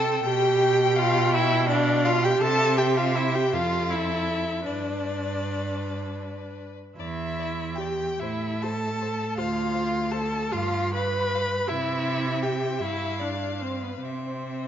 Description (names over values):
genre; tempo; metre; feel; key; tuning
classical, slow romantic movement for string quartet; 46-56 BPM (dotted quarters); 6/8; rubato; unclear; A4 = 440 Hz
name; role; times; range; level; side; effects
rich violin; melody; 0.0-14.7 s; A4 to G5; -34 LUFS; left 12 dB; none
clear violin; second line; 0.0-14.7 s; B4 to B5; -31 LUFS; left 4 dB; none
warm viola; accompaniment; 0.0-14.7 s; B3 to B4; -26 LUFS; right 1 dB; none
rich cello; bass; 0.0-14.7 s; D2 to C3; -28 LUFS; right 3 dB; none
room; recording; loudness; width
moderate concert hall reverb, RT60 2.2 s; nothing above 7.5 kHz; -23 LUFS; side -9 dB against mid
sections
0.0-14.7 A section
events
none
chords
0.2 G/B; 2.4 C; 3.5 F; 4.7 G; 7.0 Em; 8.2 Am; 9.4 Dm7; 10.5 G7; 11.7 C; 12.8 Dm11/G; 14.0 C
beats
| 0.24 1.34 | 2.42 3.54 | 4.66 5.82 | 6.99 8.20 | 9.37 10.53 | 11.69 12.81 | 14.03